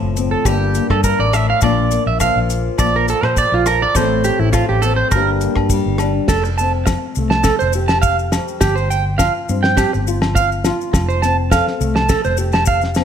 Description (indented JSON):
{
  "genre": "highlife guitar band",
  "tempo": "103 BPM",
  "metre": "4/4",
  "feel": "swing 53% on 16ths",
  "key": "F major",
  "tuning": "A4 = 438 Hz",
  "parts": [
    { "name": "nylon-string guitar", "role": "accompaniment", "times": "0.0-13.0 s", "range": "F2 to A4", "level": "-22 LUFS", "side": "left 5 dB", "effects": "none" },
    { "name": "vintage muted fingered electric bass", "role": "bass", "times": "0.0-13.0 s", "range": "F1 to Bb2", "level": "-19 LUFS", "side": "equal", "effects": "none" },
    { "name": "damped 70s drum kit", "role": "drums", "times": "0.2-13.0 s", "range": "crash cymbal, hi-hat, kick drum, rim click, snare drum", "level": "-20 LUFS", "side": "equal", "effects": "none" },
    { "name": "maracas", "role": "percussion", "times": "0.2-13.0 s", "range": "none", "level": "-29 LUFS", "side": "left 10 dB", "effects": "none" },
    { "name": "electric guitar at the edge of break-up", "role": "arpeggios", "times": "0.3-12.8 s", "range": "E4 to A5", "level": "-18 LUFS", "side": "right 5 dB", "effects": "slapback echo" },
    { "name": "agogo bells", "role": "percussion", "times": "0.5-13.0 s", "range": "none", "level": "-28 LUFS", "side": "left 6 dB", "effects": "none" }
  ],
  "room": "light reverb",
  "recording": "none",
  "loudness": "-14 LUFS",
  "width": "side -8 dB against mid",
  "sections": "0.0-6.3 A section; 6.3-13.0 B section",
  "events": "clean electric guitar solo 0.0-6.3",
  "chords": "0.5 Gm; 1.6 Bb; 4.0 F/A; 5.1 Gm; 6.3 F; 8.6 Csus4/G; 10.9 F"
}